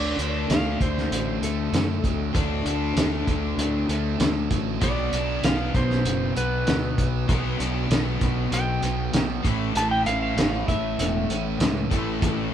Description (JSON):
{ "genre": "classic rock", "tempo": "97 BPM", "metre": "4/4", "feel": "straight", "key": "D major", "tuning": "A4 = 439 Hz", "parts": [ { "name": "clean lap steel guitar", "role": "melody", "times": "0.0-12.5 s", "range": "A4 to A5", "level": "-30 LUFS", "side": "equal", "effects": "none" }, { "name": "biting overdriven guitar", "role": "riff", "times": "0.0-12.5 s", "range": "A2 to D4", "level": "-29 LUFS", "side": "left 7 dB", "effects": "none" }, { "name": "biting overdriven guitar", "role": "riff", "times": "0.0-12.5 s", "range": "A2 to E4", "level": "-30 LUFS", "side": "right 8 dB", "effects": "none" }, { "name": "fuzz fingered electric bass", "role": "bass", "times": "0.0-12.5 s", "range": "E1 to F#2", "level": "-28 LUFS", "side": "equal", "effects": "overdrive" }, { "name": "cloth-damped thuddy drum kit", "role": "drums", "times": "0.2-12.4 s", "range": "hi-hat, kick drum, snare drum", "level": "-25 LUFS", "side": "equal", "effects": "none" } ], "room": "moderate studio reverb, RT60 0.6 s", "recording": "band playing live in one room", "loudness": "-21 LUFS", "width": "side -10 dB against mid", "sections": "0.0-12.5 A section", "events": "electric slide guitar solo 0.0-12.5", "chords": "0.0 D; 4.8 Bm; 9.5 A" }